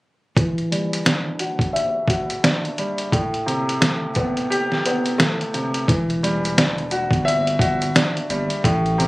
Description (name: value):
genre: hip hop, boom-bap hip-hop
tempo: 87 BPM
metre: 4/4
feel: swing 60% on 16ths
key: E minor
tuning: A4 = 445 Hz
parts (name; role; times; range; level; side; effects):
- warm upright piano; accompaniment; 0.4-9.1 s; A2 to E5; -21 LUFS; equal; high-pass filter, low-pass filter
- trip hop sampler-style drum kit; drums; 0.4-9.1 s; hi-hat, kick drum, snare drum; -20 LUFS; equal; none
- saturated sub bass; bass; 5.9-9.1 s; E1 to A1; -25 LUFS; equal; none
room: light reverb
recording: recorded on a phone in the room, studio ambience, compression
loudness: -18 LUFS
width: side -20 dB against mid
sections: 0.4-5.9 A section; 5.9-9.1 B section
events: filter sweep on upright piano 0.4-5.9; kick muted 4.5-5.9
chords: 0.4 Em9; 3.1 Am9; 5.9 Em9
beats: | 0.36 1.05 1.75 2.43 | 3.12 3.81 4.50 5.19 | 5.88 6.57 7.26 7.95 | 8.64